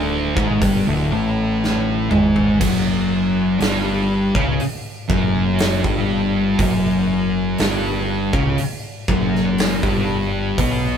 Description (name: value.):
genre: stoner and doom metal.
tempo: 60 BPM.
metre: 4/4.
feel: straight.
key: unclear.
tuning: A4 = 441 Hz.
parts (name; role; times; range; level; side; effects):
thick fuzz guitar; riff; 0.0-11.0 s; D2 to C#4; -18 LUFS; left 1 dB; distortion.
growling picked electric bass; bass; 0.0-11.0 s; D1 to C#2; -24 LUFS; right 1 dB; overdrive.
big rock drum kit; drums; 0.4-10.8 s; crash cymbal, hi-hat, kick drum, snare drum, toms; -23 LUFS; right 1 dB; none.
room: light reverb.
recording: band playing live in one room.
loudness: -16 LUFS.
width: side -8 dB against mid.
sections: 0.0-11.0 A section.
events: drum fill 1.6-2.6.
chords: 0.0 N.C.; 2.6 F#5.